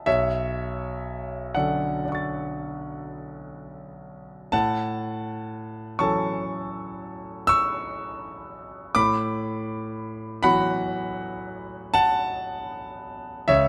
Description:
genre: classical, impressionist solo piano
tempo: 40 BPM (dotted quarters)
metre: 9/8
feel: rubato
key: unclear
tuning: A4 = 441 Hz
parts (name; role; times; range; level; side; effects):
- clear concert grand piano; solo; 0.0-13.7 s; B1 to A6; -27 LUFS; equal; none
room: little or no reverb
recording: close, detailed microphones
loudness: -26 LUFS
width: mono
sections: 0.0-13.7 A section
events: none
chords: 0.1 Bm9; 4.5 A6; 9.0 E9sus4/A

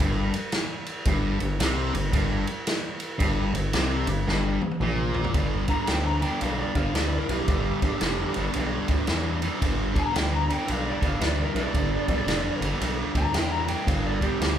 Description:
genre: blues rock power trio and southern rock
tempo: 112 BPM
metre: 4/4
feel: swing 64% on 8ths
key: unclear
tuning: A4 = 440 Hz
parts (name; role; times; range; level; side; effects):
- sludgy distorted guitar; riff; 0.0-14.6 s; G2 to E3; -28 LUFS; equal; overdrive
- gritty driven synth bass; bass; 0.0-14.6 s; F1 to E2; -28 LUFS; equal; none
- vintage drum kit; drums; 0.0-14.6 s; kick drum, ride cymbal, snare drum, toms; -28 LUFS; equal; none
- lead guitar through a small cranked amp; melody; 5.7-14.5 s; G4 to Bb5; -30 LUFS; equal; overdrive
room: light reverb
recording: band playing live in one room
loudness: -23 LUFS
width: side -10 dB against mid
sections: 0.0-5.3 A section; 5.3-14.6 B section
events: drum fill 4.3-5.3; lead electric guitar solo 5.3-14.6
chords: 0.0 Gmadd11; 5.3 G

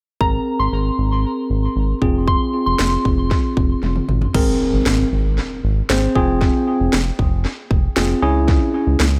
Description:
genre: synth-pop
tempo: 116 BPM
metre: 4/4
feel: straight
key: Ab major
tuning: A4 = 440 Hz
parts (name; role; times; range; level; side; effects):
- soft synth bell; second line; 0.2-3.0 s; Bb5 to C6; -26 LUFS; equal; chorus, phaser, tape echo
- tine electric piano; accompaniment; 0.2-9.1 s; C4 to C5; -23 LUFS; equal; tape echo
- round analog bass; bass; 0.2-9.2 s; F1 to Db2; -22 LUFS; equal; none
- house drum kit; drums; 0.2-9.1 s; crash cymbal, kick drum, snare drum, toms; -22 LUFS; equal; tape echo
- impact; sound effects; 4.3-6.4 s; none; -31 LUFS; equal; none
room: light reverb, digital ambience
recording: echo-heavy mix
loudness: -18 LUFS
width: mono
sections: 0.2-4.3 A section; 4.3-9.2 B section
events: drum fill 3.8-4.3; impact 4.3-6.4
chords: 0.2 Abadd9; 2.0 Fm; 4.1 N.C.; 4.3 Abadd9; 6.2 Fm; 8.2 Dbm

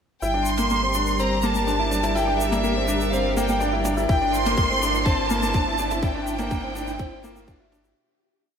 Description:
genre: piano and strings electronica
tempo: 124 BPM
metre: 4/4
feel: straight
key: unclear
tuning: A4 = 444 Hz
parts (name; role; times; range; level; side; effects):
- clear chamber violin section; melody; 0.2-7.4 s; E5 to C6; -24 LUFS; right 1 dB; diffuse ambient delay
- dark chamber string section; sustained chords; 0.2-8.0 s; G3 to D5; -30 LUFS; equal; sidechain pumping
- bright concert grand piano; riff; 0.2-7.9 s; Bb3 to E4; -25 LUFS; left 1 dB; diffuse ambient delay
- warm sub bass; bass; 0.2-7.9 s; G1; -29 LUFS; equal; sidechain pumping
- shaker and toms; drums; 0.2-7.9 s; none; -37 LUFS; equal; high-pass filter on toms, high-pass filter on snare, high-pass filter on perc, high-pass filter on room
- riser; sound effects; 3.3-8.0 s; none; -39 LUFS; right 1 dB; none
- electronic kick drum; drums; 4.1-7.6 s; none; -23 LUFS; equal; none
room: wet lush hall reverb, RT60 2.4 s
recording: dreamy mix soaked in reverb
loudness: -20 LUFS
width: side -7 dB against mid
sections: 0.2-8.0 build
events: build-up 0.2-8.0; fade-out 5.4-8.0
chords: 0.2 Cadd9/G

